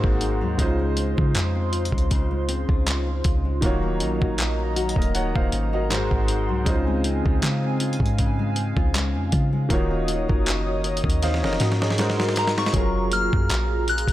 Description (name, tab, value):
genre	contemporary R&B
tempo	79 BPM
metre	4/4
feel	swing 54% on 16ths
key	Db major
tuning	A4 = 440 Hz
part	clear grand piano	accompaniment	0.0-14.1 s	Ab2 to Gb5	-28 LUFS	right 1 dB	none
part	hollow soft pad	sustained chords	0.0-14.1 s	Gb3 to Eb6	-30 LUFS	right 1 dB	chorus, sidechain pumping
part	nylon-string guitar	arpeggios	0.0-14.1 s	Ab2 to Bb4	-30 LUFS	left 6 dB	ping-pong delay
part	soft 808-style bass	bass	0.0-14.1 s	Eb1 to Db3	-25 LUFS	equal	none
part	dusty soul sampler-style drum kit	drums	0.0-14.1 s	handclaps, hi-hat, kick drum, snare drum	-24 LUFS	equal	none
part	soft synth bell	melody	12.4-14.1 s	Bb5 to Gb6	-25 LUFS	left 2 dB	chorus, phaser
room	little or no reverb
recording	none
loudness	-20 LUFS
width	side -14 dB against mid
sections	0.0-12.7 A section; 12.7-14.1 B section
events	drum fill 11.2-12.7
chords	0.0 Ab7; 0.6 Dbmaj7; 3.6 Ebm7; 5.9 Ab7; 6.7 Dbmaj7; 9.7 Ebm7; 12.0 Ab9; 12.7 Gbmaj9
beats	| 0.59 1.35 2.11 2.87 | 3.63 4.39 5.15 5.91 | 6.67 7.42 8.18 8.94 | 9.70 10.46 11.22 11.98 | 12.74 13.50